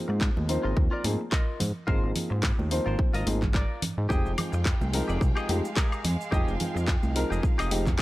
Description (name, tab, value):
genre	nu-disco, nu disco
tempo	108 BPM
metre	4/4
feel	swing 56% on 16ths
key	F minor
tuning	A4 = 440 Hz
part	warm baby grand piano	accompaniment	0.0-7.8 s	F3 to G5	-32 LUFS	left 1 dB	sidechain pumping, low-pass filter, slapback echo
part	direct-recorded clean electric guitar	riff	0.1-8.0 s	F4 to Eb5	-36 LUFS	left 2 dB	analog chorus
part	fat analog bass	bass	0.1-8.0 s	F1 to Ab2	-28 LUFS	equal	none
part	electronic kick drum	drums	0.2-8.0 s	none	-26 LUFS	equal	none
part	house drum kit	drums	0.2-8.0 s	handclaps, hi-hat, woodblock	-33 LUFS	left 1 dB	none
part	congas and maracas	percussion	0.4-8.0 s	none	-35 LUFS	right 2 dB	none
part	warm symphonic violin section	sustained chords	4.1-8.0 s	Ab3 to G5	-39 LUFS	right 2 dB	sidechain pumping
room	little or no reverb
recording	none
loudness	-24 LUFS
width	side -17 dB against mid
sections	0.0-8.0 A section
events	none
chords	0.0 Ab69; 4.1 Fm9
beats	0.21 0.77 1.32 | 1.88 2.44 2.99 3.55 | 4.10 4.66 5.21 5.77 | 6.32 6.88 7.43 7.99